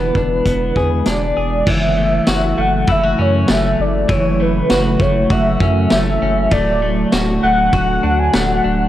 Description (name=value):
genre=dream pop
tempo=99 BPM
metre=4/4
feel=straight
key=unclear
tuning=A4 = 440 Hz
part: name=warm velvety synth lead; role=melody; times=0.0-8.9 s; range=B4 to G#5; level=-18 LUFS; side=equal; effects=chorus, tape echo
part: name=warbly tape-like pad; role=sustained chords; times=0.0-8.9 s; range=C#3 to F#4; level=-21 LUFS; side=right 1 dB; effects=chorus, built-in reverb
part: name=clean electric guitar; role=arpeggios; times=0.0-8.9 s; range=E3 to G#4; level=-21 LUFS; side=left 3 dB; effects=wide subtle chorus, tape echo
part: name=saturated sub bass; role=bass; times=0.0-8.9 s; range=D1 to F#2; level=-20 LUFS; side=equal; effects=transformer saturation
part: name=vintage drum kit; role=drums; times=0.1-8.5 s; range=crash cymbal, hi-hat, kick drum, ride cymbal, snare drum, tambourine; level=-20 LUFS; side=equal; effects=none
room=little or no reverb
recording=dry, gritty hardware recording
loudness=-13 LUFS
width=side -13 dB against mid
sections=0.0-1.7 A section; 1.7-8.9 B section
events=none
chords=0.0 E7; 1.7 F#m7; 6.5 D